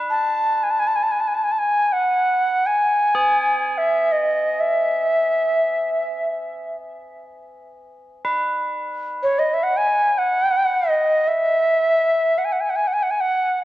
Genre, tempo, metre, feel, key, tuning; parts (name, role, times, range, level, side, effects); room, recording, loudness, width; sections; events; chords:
world meditative, free-time meditation music; free time; A4 = 439 Hz
tubular bells; texture; 0.0-13.6 s; G#4 to B4; -28 LUFS; equal
mellow Native American-style cedar flute; melody; 0.1-13.6 s; C#5 to A5; -17 LUFS; equal; tape echo
wet concert hall reverb, RT60 2.0 s; worn, warbling old tape, cassette tape, warbly pitch drift; -17 LUFS; side -15 dB against mid
0.0-13.6 A section